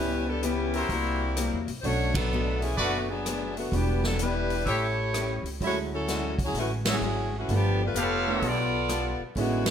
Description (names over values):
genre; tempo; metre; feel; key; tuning
jazz, big band swing; 128 BPM; 4/4; swing 66% on 8ths; unclear; A4 = 439 Hz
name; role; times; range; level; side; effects
clear saxophone section; melody; 0.0-9.7 s; D3 to D5; -29 LUFS; left 1 dB; plate reverb
picked acoustic archtop guitar; accompaniment; 0.0-9.7 s; A2 to A4; -35 LUFS; left 6 dB; none
warm concert grand piano; accompaniment; 0.0-9.6 s; F#3 to G4; -33 LUFS; right 6 dB; none
upright bass; bass; 0.0-9.7 s; E1 to E2; -30 LUFS; right 1 dB; none
swinging big-band drum kit; drums; 0.4-9.7 s; hi-hat, kick drum, ride cymbal, rim click, snare drum; -33 LUFS; equal; none
bright trumpet section; stabs; 0.7-8.7 s; E4 to F5; -30 LUFS; equal; none
room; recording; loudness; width
moderate large studio reverb, RT60 0.9 s; none; -25 LUFS; side -8 dB against mid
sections
0.0-9.7 A section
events
band accent 2.1, 6.8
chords
0.0 C#m7b5; 0.9 C7#11; 1.8 Bm7; 3.7 Em7; 4.7 A7; 5.6 Dmaj9#11; 7.5 G9